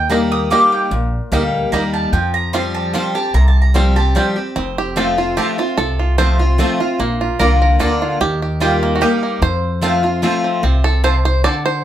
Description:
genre	bluegrass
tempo	148 BPM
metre	3/4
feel	straight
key	F mixolydian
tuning	A4 = 440 Hz
part	picked acoustic archtop guitar	accompaniment	0.0-11.8 s	F2 to G4	-19 LUFS	left 2 dB	none
part	mandolin	stabs	0.0-11.5 s	Bb3 to Eb6	-20 LUFS	right 2 dB	none
part	upright bass	bass	0.0-11.4 s	F1 to F2	-17 LUFS	equal	none
part	bluegrass banjo	melody	0.1-11.8 s	Bb3 to D5	-20 LUFS	right 3 dB	none
room	wet studio reverb, RT60 0.6 s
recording	heard from further back in the room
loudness	-14 LUFS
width	side -11 dB against mid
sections	0.0-4.6 A section; 4.6-11.8 A section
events	mandolin solo 0.0-4.6; five-string banjo solo 4.6-11.8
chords	0.0 Eb; 2.1 Fsus2; 4.6 F; 7.0 Bb; 8.2 Eb; 9.4 F

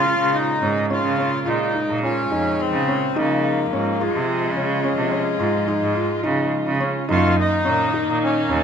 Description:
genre	contemporary instrumental, chamber music in an uneven meter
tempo	106 BPM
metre	7/4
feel	straight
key	unclear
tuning	A4 = 439 Hz
part	accordion	melody	0.0-8.6 s	Ab3 to F4	-22 LUFS	left 3 dB	none
part	rich chamber string section	sustained chords	0.0-8.6 s	Bb2 to F4	-28 LUFS	right 1 dB	none
part	clear cello	bass	0.0-8.6 s	Eb2 to Db3	-23 LUFS	right 4 dB	none
part	felt-muted upright piano	arpeggios	0.1-8.6 s	Db4 to F4	-24 LUFS	equal	none
room	moderate recital hall reverb, RT60 1.5 s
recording	none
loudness	-18 LUFS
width	side -7 dB against mid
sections	0.0-8.6 A section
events	none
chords	0.0 Bbm7; 3.2 Db; 7.1 Gb6

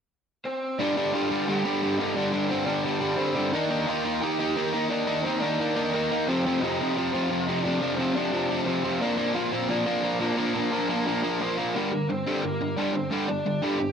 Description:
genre	punk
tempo	175 BPM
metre	4/4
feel	straight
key	G minor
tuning	A4 = 442 Hz
part	lead guitar through a small cranked amp	melody	0.5-13.9 s	Bb3 to G5	-29 LUFS	equal	overdrive
part	crunchy overdriven guitar	riff	0.8-13.9 s	F2 to Eb4	-25 LUFS	equal	none
room	moderate studio reverb, RT60 0.6 s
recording	none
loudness	-24 LUFS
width	side -7 dB against mid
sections	0.8-11.8 A section; 11.8-13.9 B section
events	none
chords	0.0 N.C.; 0.8 G5; 3.5 Eb; 6.3 F5; 9.0 Bb; 11.8 Gm

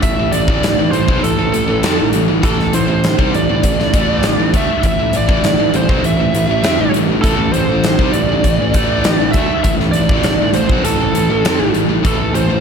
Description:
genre	hard rock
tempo	100 BPM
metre	4/4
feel	straight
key	A minor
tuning	A4 = 440 Hz
part	biting lead guitar	melody	0.0-12.6 s	A4 to E5	-18 LUFS	right 3 dB	overdrive, slapback echo
part	scooped high-gain guitar	riff	0.0-12.6 s	A2 to C4	-21 LUFS	left 12 dB	distortion
part	tight distorted guitar	riff	0.0-12.6 s	A2 to C4	-22 LUFS	right 9 dB	distortion, slapback echo
part	fuzz picked electric bass	bass	0.0-12.6 s	A1 to F2	-19 LUFS	equal	overdrive
part	huge arena drum kit	drums	0.0-12.5 s	hi-hat, kick drum, snare drum	-16 LUFS	equal	none
room	moderate lush hall reverb, RT60 1.9 s, small room ambience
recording	big arena sound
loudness	-12 LUFS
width	side -6 dB against mid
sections	0.0-12.6 A section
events	none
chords	0.0 Am

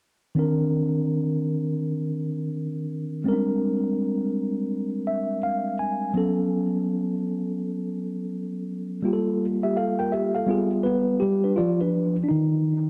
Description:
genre	hip hop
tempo	83 BPM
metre	4/4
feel	swing 63% on 16ths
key	unclear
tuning	A4 = 440 Hz
part	mellow tine electric piano	solo	0.3-12.9 s	Eb3 to Ab5	-25 LUFS	equal	none
room	light reverb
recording	dark, warm production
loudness	-25 LUFS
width	mono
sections	0.4-11.9 A section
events	tine electric piano fill 4.7-6.2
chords	0.4 Cm9; 3.3 Bb13; 6.2 A69; 9.0 Gm9; 10.5 G7b9; 11.9 Cmadd9 (rootless)

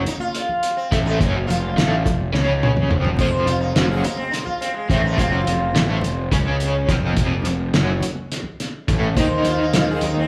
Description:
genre	psychedelic rock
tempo	211 BPM (eighths)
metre	7/8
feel	straight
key	F phrygian dominant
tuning	A4 = 439 Hz
part	overdriven electric guitar	riff	0.0-10.3 s	F2 to Eb4	-26 LUFS	equal	tremolo
part	fuzz picked electric bass	bass	0.0-10.3 s	F1 to Eb2	-25 LUFS	equal	overdrive
part	sitar	melody	0.1-10.3 s	Ab3 to C5	-27 LUFS	equal	none
part	cloth-damped thuddy drum kit	drums	0.1-10.1 s	hi-hat, kick drum, snare drum, toms	-25 LUFS	equal	none
part	congas	percussion	0.1-10.3 s	none	-36 LUFS	equal	none
room	moderate large studio reverb, RT60 1.2 s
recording	band playing live in one room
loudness	-20 LUFS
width	mono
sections	0.0-10.3 A section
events	sitar solo 0.0-10.3; drum fill 2.3-3.2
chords	0.0 F

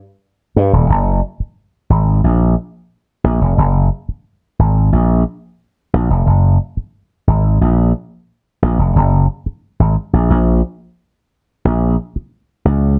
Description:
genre	funk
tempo	89 BPM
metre	4/4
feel	straight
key	unclear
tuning	A4 = 440 Hz
part	slap bass with an envelope filter	solo	0.6-13.0 s	Eb1 to G2	-14 LUFS	equal	none
room	light reverb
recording	none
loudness	-15 LUFS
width	mono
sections	0.9-11.7 A section; 11.7-13.0 B section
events	stop 11.0-11.7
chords	none

